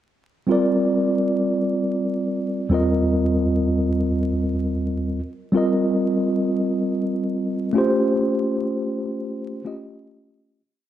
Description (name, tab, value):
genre	hip hop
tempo	free time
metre	none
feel	none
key	unclear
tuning	A4 = 439 Hz
part	mellow tine electric piano	solo	0.5-10.6 s	Eb2 to Eb5	-19 LUFS	equal	medium stereo tremolo, slapback echo
room	moderate plate reverb, RT60 2.9 s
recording	dark, warm production, vinyl crackle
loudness	-19 LUFS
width	side -11 dB against mid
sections	0.5-10.6 head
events	fade-out 8.1-10.6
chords	0.5 Bb69/G; 2.7 Cm7/Eb; 5.5 F9sus4; 7.8 A7alt